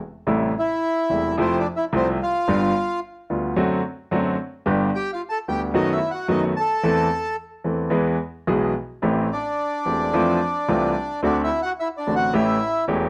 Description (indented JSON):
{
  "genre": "tango",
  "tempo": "110 BPM",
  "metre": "4/4",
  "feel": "rubato",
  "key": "A minor",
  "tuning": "A4 = 440 Hz",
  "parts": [
    { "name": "warm grand piano", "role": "accompaniment", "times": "0.3-13.1 s", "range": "E1 to A4", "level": "-23 LUFS", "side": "equal", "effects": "none" },
    { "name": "bandoneon", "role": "melody", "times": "0.6-12.9 s", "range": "C4 to A5", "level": "-25 LUFS", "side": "equal", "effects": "plate reverb" }
  ],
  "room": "moderate studio reverb, RT60 0.7 s",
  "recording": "none",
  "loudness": "-22 LUFS",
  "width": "mono",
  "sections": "0.3-13.1 A section",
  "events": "none",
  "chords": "0.3 Am7; 1.4 Fmaj7; 2.5 G7; 3.6 D7/F#; 4.7 G; 5.7 B7/F#; 6.8 Am/E; 7.9 E; 9.0 Am7; 10.1 Fmaj7; 11.2 D7; 12.3 A7",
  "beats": "| 0.28 0.83 1.38 1.93 | 2.48 3.03 3.57 4.11 | 4.66 5.20 5.74 6.29 | 6.83 7.38 7.93 8.48 | 9.04 9.59 10.14 10.69 | 11.24 11.79 12.33 12.88"
}